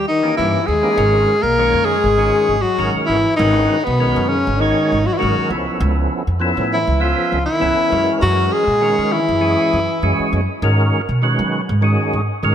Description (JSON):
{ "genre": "jazz", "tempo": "100 BPM", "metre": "4/4", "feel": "swing 53% on 16ths", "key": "G# minor", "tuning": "A4 = 440 Hz", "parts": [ { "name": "warm alto saxophone", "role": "melody", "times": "0.0-10.3 s", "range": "B3 to A#4", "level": "-17 LUFS", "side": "equal", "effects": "none" }, { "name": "growling trombone", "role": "second line", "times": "0.0-10.3 s", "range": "B2 to A#3", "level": "-23 LUFS", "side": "left 5 dB", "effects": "none" }, { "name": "upright bass", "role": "bass", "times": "0.0-12.5 s", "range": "G#1 to F#3", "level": "-20 LUFS", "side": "equal", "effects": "none" }, { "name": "percussive tonewheel organ", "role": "accompaniment", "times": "0.2-12.5 s", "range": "D#3 to E5", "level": "-21 LUFS", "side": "right 1 dB", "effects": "overdrive, chorus vibrato, slow rotary speaker" } ], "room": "moderate lush hall reverb, RT60 2.2 s", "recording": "bright 1980s-style digital production", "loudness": "-14 LUFS", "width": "side -9 dB against mid", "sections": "1.0-12.5 A section", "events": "none", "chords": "0.0 Eb7b9; 1.0 G#m9; 5.5 C#7alt; 7.9 F#9; 10.6 G#m9", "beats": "0.38 | 0.98 1.58 2.19 2.79 | 3.39 4.00 4.60 5.20 | 5.80 6.41 7.01 7.61 | 8.22 8.82 9.42 10.03 | 10.63 11.23 11.84 12.44" }